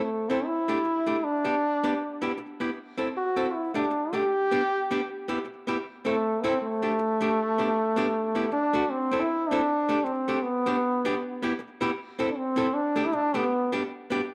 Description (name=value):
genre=ska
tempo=156 BPM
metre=4/4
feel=swing 57% on 8ths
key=A dorian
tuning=A4 = 440 Hz
part: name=clear trombone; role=melody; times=0.0-13.7 s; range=A3 to G4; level=-28 LUFS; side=equal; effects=slapback echo
part: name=archtop guitar, miked and amplified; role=accompaniment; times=0.3-14.2 s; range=A3 to A4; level=-32 LUFS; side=equal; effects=slapback echo
room=wet spring reverb, RT60 2.0 s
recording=none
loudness=-27 LUFS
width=mono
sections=0.0-8.9 A section; 8.9-14.3 B section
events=none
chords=0.5 Dsus4; 1.2 G; 2.0 Em; 2.8 Am; 3.5 Dsus4; 4.3 G; 5.1 Em; 5.8 Am; 6.6 Dsus4; 7.4 G; 8.1 Em; 8.5 D; 8.9 Am; 9.7 Dsus4; 10.4 G; 11.2 Em; 12.0 Am; 12.7 Dsus4; 13.5 G